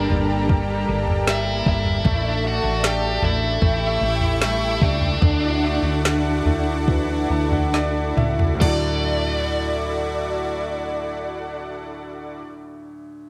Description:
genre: pop ballad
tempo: 68-77 BPM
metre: 4/4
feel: straight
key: D major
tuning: A4 = 445 Hz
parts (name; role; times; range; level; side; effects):
- biting lead guitar; melody; 0.0-12.4 s; D4 to G5; -28 LUFS; equal; overdrive, diffuse ambient delay
- dark studio violin section; second line; 0.0-12.4 s; D4 to C#6; -32 LUFS; equal; none
- bright grand piano; accompaniment; 0.0-13.3 s; D2 to A5; -32 LUFS; equal; none
- lush unison pad; sustained chords; 0.0-12.4 s; Bb3 to E5; -32 LUFS; equal; chorus
- fingerpicked steel-string acoustic guitar; arpeggios; 0.0-12.6 s; A2 to A4; -35 LUFS; equal; diffuse ambient delay
- woody fretless electric bass; bass; 0.0-12.4 s; G1 to D2; -27 LUFS; equal; none
- smooth R&B drum kit; drums; 0.1-8.8 s; crash cymbal, kick drum, snare drum, toms; -24 LUFS; equal; none
room: moderate plate reverb, RT60 2.0 s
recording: dreamy mix soaked in reverb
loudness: -21 LUFS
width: mono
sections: 0.0-8.6 A section; 8.6-12.2 B section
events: slowing down 2.1-8.6; grand piano fill 6.9-8.6; drum fill 7.7-8.6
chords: 0.0 Gmadd9; 2.1 D/A; 3.6 A7; 5.2 Dadd9

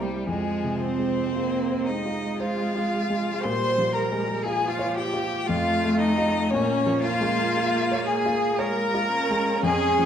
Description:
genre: classical, slow romantic movement for piano quintet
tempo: 58 BPM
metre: 3/4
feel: rubato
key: unclear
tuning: A4 = 438 Hz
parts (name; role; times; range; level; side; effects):
- rich violin; melody; 0.0-10.1 s; G4 to C6; -29 LUFS; left 6 dB; none
- clear cello; second line; 0.0-10.1 s; G3 to C5; -28 LUFS; right 5 dB; none
- rich violin; second line; 0.0-10.1 s; G3 to C5; -29 LUFS; left 2 dB; none
- dark concert grand piano; accompaniment; 0.0-10.1 s; C2 to Eb5; -28 LUFS; left 1 dB; none
- rich viola; accompaniment; 0.0-10.1 s; F3 to Db4; -29 LUFS; right 2 dB; none
room: wet recital hall reverb, RT60 1.4 s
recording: dark, warm production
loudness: -22 LUFS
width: side -8 dB against mid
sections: 0.0-10.1 A section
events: none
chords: 0.3 Fm; 3.4 Bbm7; 5.5 F7; 6.5 Bbm7

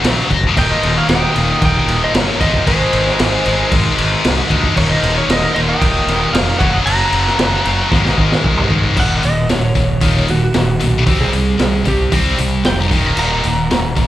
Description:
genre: hard rock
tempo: 114 BPM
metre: 4/4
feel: straight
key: unclear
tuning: A4 = 440 Hz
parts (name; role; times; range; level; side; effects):
- heavy high-gain guitar; riff; 0.0-14.1 s; Eb2 to C4; -18 LUFS; left 6 dB; distortion
- tight distorted guitar; riff; 0.0-14.1 s; Eb2 to C4; -22 LUFS; right 9 dB; distortion
- fuzz fingered electric bass; bass; 0.0-14.1 s; Eb1 to D2; -19 LUFS; equal; overdrive
- raw garage drum kit; drums; 0.0-14.1 s; crash cymbal, hi-hat, kick drum, snare drum, toms; -17 LUFS; equal; none
- lightly driven lead guitar; melody; 0.6-14.1 s; Gb4 to Bb5; -21 LUFS; right 1 dB; none
- octave-fuzz lead guitar; second line; 0.6-7.9 s; Ab4 to Gb5; -25 LUFS; right 3 dB; distortion, plate reverb, slapback echo
room: light reverb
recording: live gig heard through the venue's PA, club reverb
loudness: -12 LUFS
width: side -13 dB against mid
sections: 0.0-9.0 A section; 9.0-14.1 B section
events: drum fill 7.9-9.0; lead electric guitar solo 9.0-14.1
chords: 0.0 Gb; 0.6 Eb; 2.7 Ab; 4.8 Eb; 6.6 Gb; 7.9 Ab; 9.0 Eb5; 11.1 C5; 12.9 Eb5

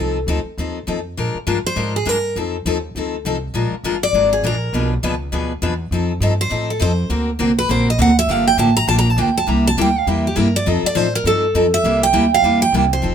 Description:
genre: acoustic string swing (jazz manouche)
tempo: 202 BPM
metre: 4/4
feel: swing 57% on 8ths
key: F mixolydian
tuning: A4 = 440 Hz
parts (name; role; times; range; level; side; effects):
- picked steel-string acoustic guitar; melody; 0.0-13.1 s; G4 to Bb5; -17 LUFS; right 2 dB; none
- picked steel-string acoustic guitar; accompaniment; 0.0-13.1 s; B2 to B4; -20 LUFS; left 2 dB; none
- upright bass; bass; 0.0-13.1 s; F1 to Bb2; -22 LUFS; equal; none
room: light reverb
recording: minimal, uncompressed stereo recording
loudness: -15 LUFS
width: side -8 dB against mid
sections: 0.0-13.0 A section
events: steel-string acoustic guitar solo 0.0-13.1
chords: 0.0 F7; 1.2 Bb7; 2.4 F7; 3.5 Bb7; 4.7 Bdim7; 5.9 F7; 7.1 Daug7; 8.3 Gm7; 9.5 C7; 10.7 F7; 11.8 C7

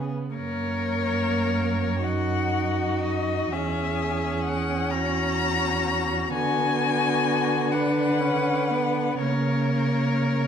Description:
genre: classical, slow romantic movement for string quartet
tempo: 34-44 BPM (dotted quarters)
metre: 6/8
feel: rubato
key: F# major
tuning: A4 = 442 Hz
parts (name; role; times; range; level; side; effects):
- rich violin; second line; 0.0-10.5 s; F#4 to B4; -30 LUFS; left 3 dB; none
- warm viola; accompaniment; 0.0-10.5 s; A#3 to D#4; -28 LUFS; right 2 dB; none
- dark cello; bass; 0.0-10.5 s; E2 to D3; -27 LUFS; right 3 dB; none
- rich violin; melody; 0.3-10.5 s; C#5 to A#5; -28 LUFS; left 6 dB; none
room: moderate recital hall reverb, RT60 1.4 s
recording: dark, warm production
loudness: -22 LUFS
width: side -8 dB against mid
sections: 0.4-10.5 A section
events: none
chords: 0.4 F#; 3.5 F#7/E; 6.3 Bm/D; 9.2 A#m/C#

